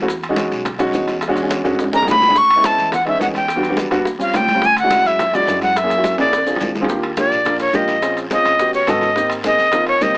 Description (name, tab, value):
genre	Afro-Cuban jazz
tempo	212 BPM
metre	4/4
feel	straight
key	Eb major from 6.9 s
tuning	A4 = 440 Hz
part	warm upright piano	accompaniment	0.0-10.2 s	G3 to Bb4	-20 LUFS	equal	none
part	upright bass	bass	0.0-10.2 s	Ab1 to A2	-30 LUFS	equal	none
part	bongos	percussion	0.1-10.2 s	none	-28 LUFS	left 1 dB	none
part	congas	percussion	0.1-10.2 s	none	-27 LUFS	equal	none
part	guiro	percussion	0.1-10.2 s	none	-33 LUFS	left 1 dB	none
part	maracas	percussion	0.1-10.2 s	none	-37 LUFS	left 2 dB	none
part	timbales	percussion	0.2-10.2 s	none	-27 LUFS	right 1 dB	none
part	breathy bright jazz flute	melody	1.9-10.2 s	Db5 to C#6	-14 LUFS	equal	none
room	light reverb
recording	AM radio sound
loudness	-14 LUFS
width	side -26 dB against mid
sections	0.0-6.9 A section; 6.9-10.2 B section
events	drum fill 1.7-2.4, 6.2-6.9; flute solo 6.9-10.2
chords	0.1 Emaj13; 1.2 E13; 2.4 Amaj9; 3.5 Em9; 4.1 D#13; 4.6 Dmaj9#11; 5.8 F#7; 6.3 A#7; 6.9 Ebmaj7; 8.0 Bbm9; 8.6 A13; 9.2 Abmaj9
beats	| 0.09 0.38 0.66 0.94 | 1.23 1.51 1.79 2.08 | 2.36 2.65 2.93 3.21 | 3.49 3.78 4.06 4.34 | 4.63 4.91 5.19 5.47 | 5.76 6.04 6.32 6.61 | 6.89 7.17 7.46 7.74 | 8.03 8.31 8.59 8.88 | 9.16 9.44 9.73 10.01